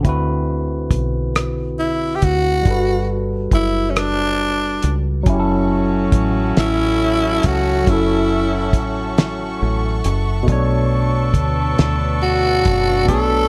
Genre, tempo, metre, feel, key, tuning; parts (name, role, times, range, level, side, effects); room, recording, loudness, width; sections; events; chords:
slow six-eight R&B; 46 BPM (dotted quarters); 6/8; straight; A4 = 440 Hz
barky tine electric piano; accompaniment; 0.0-13.5 s; B2 to C#5; -24 LUFS; equal; overdrive, phaser
cloth-damped thuddy drum kit; drums; 0.0-13.3 s; hi-hat, kick drum, rim click, snare drum; -19 LUFS; equal
deep dub fingered electric bass; bass; 0.1-13.5 s; F#1 to D2; -23 LUFS; equal
growling tenor saxophone; melody; 1.8-13.5 s; C#4 to A4; -20 LUFS; equal; slapback echo
warm studio string section; sustained chords; 5.3-13.5 s; D4 to C#6; -32 LUFS; equal; plate reverb
warm horn section; stabs; 5.3-13.5 s; A2 to A4; -28 LUFS; equal; slapback echo, plate reverb
light reverb; -18 LUFS; mono
0.0-5.3 A section; 5.3-13.5 B section
0.0 D13; 2.7 Gmaj9; 5.3 F#m7; 10.5 Bm9